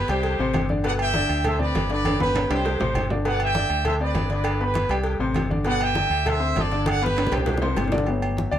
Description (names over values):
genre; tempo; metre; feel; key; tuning
latin, salsa; 199 BPM; 4/4; straight; G major; A4 = 440 Hz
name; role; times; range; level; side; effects
clear trumpet section; melody; 0.0-7.9 s; G4 to G5; -26 LUFS; right 2 dB; none
clear baby grand piano; accompaniment; 0.0-8.6 s; B2 to C6; -26 LUFS; left 3 dB; none
deep dub fingered electric bass; bass; 0.0-8.6 s; G1 to D2; -26 LUFS; equal; none
agogo bells and timbales; percussion; 0.1-8.6 s; none; -30 LUFS; right 3 dB; none
congas; percussion; 0.1-8.6 s; none; -30 LUFS; left 1 dB; none
cowbell and bongos; percussion; 0.1-8.0 s; none; -32 LUFS; left 1 dB; none
room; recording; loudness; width
moderate studio reverb, RT60 0.6 s; none; -20 LUFS; side -10 dB against mid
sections
0.0-8.1 A section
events
drum fill 2.0-3.3, 6.9-8.1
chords
0.2 C5; 0.8 G; 1.4 D5; 2.0 G; 2.6 C5; 3.3 G; 3.9 D5; 4.5 G; 5.1 C5; 5.7 G; 6.3 D5; 6.9 G; 7.5 C5; 8.1 Gmaj7